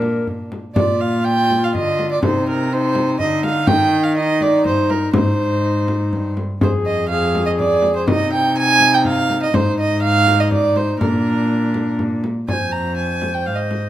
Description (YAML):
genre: classical, renaissance-style consort dance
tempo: 123 BPM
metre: 3/4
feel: straight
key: Bb mixolydian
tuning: A4 = 439 Hz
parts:
  - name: mellow tenor recorder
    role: melody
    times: 0.0-13.9 s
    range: D4 to D5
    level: -22 LUFS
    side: left 3 dB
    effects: none
  - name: warm violin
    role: second line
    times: 0.0-13.9 s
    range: D4 to Bb5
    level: -18 LUFS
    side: right 3 dB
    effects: none
  - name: rich cello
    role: bass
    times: 0.0-13.9 s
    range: F2 to Eb3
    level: -21 LUFS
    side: equal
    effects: none
  - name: frame drum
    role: percussion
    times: 0.0-13.9 s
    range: none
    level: -22 LUFS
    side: left 1 dB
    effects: none
room: moderate stone room reverb, RT60 0.9 s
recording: none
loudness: -15 LUFS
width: side -13 dB against mid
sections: 0.8-12.5 A section; 12.5-13.9 B section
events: none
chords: 0.0 Bb; 2.2 Cm; 3.7 Eb; 5.1 Ab; 6.6 Fm; 8.1 Cm; 9.5 Ab5; 11.0 Bb; 12.5 Fm